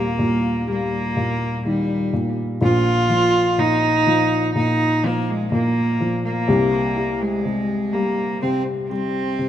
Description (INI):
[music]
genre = pop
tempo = 62 BPM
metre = 4/4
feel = straight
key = Eb major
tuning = A4 = 441 Hz
[part]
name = warm cello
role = melody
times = 0.0-9.5 s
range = G3 to F4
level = -20 LUFS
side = right 1 dB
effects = none
[part]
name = felt-muted upright piano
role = accompaniment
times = 0.0-9.5 s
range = Eb1 to G4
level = -21 LUFS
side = left 1 dB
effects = none
[sound]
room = moderate lush hall reverb, RT60 2.7 s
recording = rough home demo mix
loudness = -18 LUFS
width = side -10 dB against mid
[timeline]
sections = 0.0-9.5 A section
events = none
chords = 0.0 Eb; 2.6 Bbsus4; 6.5 C5